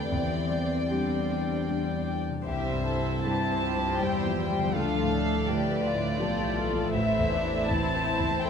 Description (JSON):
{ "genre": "cinematic, emotional film score for orchestra", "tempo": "74-84 BPM", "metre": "3/4", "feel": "rubato", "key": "unclear", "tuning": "A4 = 439 Hz", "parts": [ { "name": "warm studio violin section", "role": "melody", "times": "0.0-8.5 s", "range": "D5 to A5", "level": "-32 LUFS", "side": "left 2 dB", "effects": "none" }, { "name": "warm studio violin section", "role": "second line", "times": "0.0-8.5 s", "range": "E4 to D5", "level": "-33 LUFS", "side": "left 1 dB", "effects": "none" }, { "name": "clear concert grand piano", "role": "accompaniment", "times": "0.0-8.5 s", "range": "A1 to C5", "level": "-32 LUFS", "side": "left 2 dB", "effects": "none" }, { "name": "warm studio viola section", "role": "accompaniment", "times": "0.0-8.5 s", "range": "E3 to G4", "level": "-33 LUFS", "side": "right 1 dB", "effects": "none" }, { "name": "concert harp", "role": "arpeggios", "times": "0.0-8.5 s", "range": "A2 to D5", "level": "-34 LUFS", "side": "left 6 dB", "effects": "none" }, { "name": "dark studio double bass section", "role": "bass", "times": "0.0-8.5 s", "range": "A1 to E2", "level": "-35 LUFS", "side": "right 5 dB", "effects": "none" }, { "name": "warm studio cello section", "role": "bass", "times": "0.0-8.5 s", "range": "A2 to D4", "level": "-37 LUFS", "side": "right 2 dB", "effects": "none" } ], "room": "moderate scoring stage reverb, RT60 1.9 s", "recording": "minimal, uncompressed stereo recording", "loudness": "-25 LUFS", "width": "side -7 dB against mid", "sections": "0.0-2.5 A section; 2.5-8.5 B section", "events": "none", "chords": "0.1 Cadd9/E; 2.5 C; 4.8 Dmadd9; 6.9 Am" }